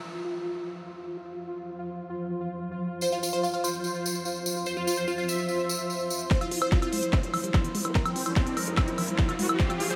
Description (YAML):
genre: psychedelic trance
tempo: 146 BPM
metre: 4/4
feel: straight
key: unclear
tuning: A4 = 440 Hz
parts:
  - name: pulsing gated texture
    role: sustained chords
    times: 0.0-10.0 s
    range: E4 to F4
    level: -37 LUFS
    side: equal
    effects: chorus, built-in reverb, sidechain pumping
  - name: granular cloud pad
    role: texture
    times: 0.0-10.0 s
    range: F3 to C6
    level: -38 LUFS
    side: equal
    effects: built-in reverb, sidechain pumping
  - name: supersaw stab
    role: melody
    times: 3.0-10.0 s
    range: C4 to E5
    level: -35 LUFS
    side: equal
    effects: phaser, sidechain pumping, delay
  - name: tambourine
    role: percussion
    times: 3.0-6.3 s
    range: none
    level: -37 LUFS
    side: equal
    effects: none
  - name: liquid acid bass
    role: riff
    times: 6.3-9.9 s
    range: E3 to F4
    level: -39 LUFS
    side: equal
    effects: phaser, cassette tape, sidechain pumping, delay
  - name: electronic kick drum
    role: drums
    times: 6.3-9.7 s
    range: none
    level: -27 LUFS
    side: equal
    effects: none
  - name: techno drum kit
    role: drums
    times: 6.3-10.0 s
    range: hi-hat, snare drum, woodblock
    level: -34 LUFS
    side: equal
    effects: none
  - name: riser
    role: sound effects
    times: 7.4-10.0 s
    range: none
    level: -39 LUFS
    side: equal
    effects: none
  - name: vowel-sweep wobble bass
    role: second line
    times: 7.1-8.8 s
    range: none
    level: barely audible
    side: none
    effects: none
room: wet huge ambient reverb, RT60 6.0 s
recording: dreamy mix soaked in reverb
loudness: -28 LUFS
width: mono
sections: 0.0-6.3 A section; 6.3-10.0 B section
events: filter sweep on synth texture 0.0-6.3; build-up 6.3-10.0; drum fill 6.3-10.0; filter sweep on acid bass 6.3-10.0; riser 7.4-10.0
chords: 0.0 F5